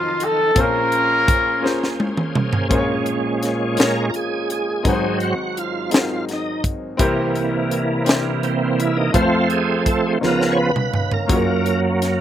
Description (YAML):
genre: slow gospel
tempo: 56 BPM (dotted quarters)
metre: 6/8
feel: straight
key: Bb minor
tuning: A4 = 439 Hz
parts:
  - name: warm horn section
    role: melody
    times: 0.0-2.0 s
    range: Db4 to Bb4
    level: -17 LUFS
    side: equal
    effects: none
  - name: clear grand piano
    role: accompaniment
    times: 0.0-12.2 s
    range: F1 to Eb5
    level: -25 LUFS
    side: left 4 dB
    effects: slapback echo
  - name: bright tonewheel organ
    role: sustained chords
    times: 0.0-12.2 s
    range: Gb2 to F5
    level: -20 LUFS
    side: right 3 dB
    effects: chorus vibrato, slow rotary speaker
  - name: crisp fusion drum kit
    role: drums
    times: 0.2-12.2 s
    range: hi-hat, kick drum, snare drum, toms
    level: -20 LUFS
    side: equal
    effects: none
  - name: mellow French horn section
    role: sustained chords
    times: 2.7-12.2 s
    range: F3 to F5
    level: -29 LUFS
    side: equal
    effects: none
room: little or no reverb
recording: recorded outdoors, with no room sound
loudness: -17 LUFS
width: side -10 dB against mid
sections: 0.0-2.7 A section; 2.7-12.2 B section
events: drum fill 1.6-2.7, 10.2-11.3; tonewheel organ solo 2.7-12.2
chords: 0.0 F7b9; 0.6 Bbm9; 2.7 Bbm7; 4.9 Ab7; 7.0 C7; 9.1 F; 10.2 Db13; 11.3 Gbmaj7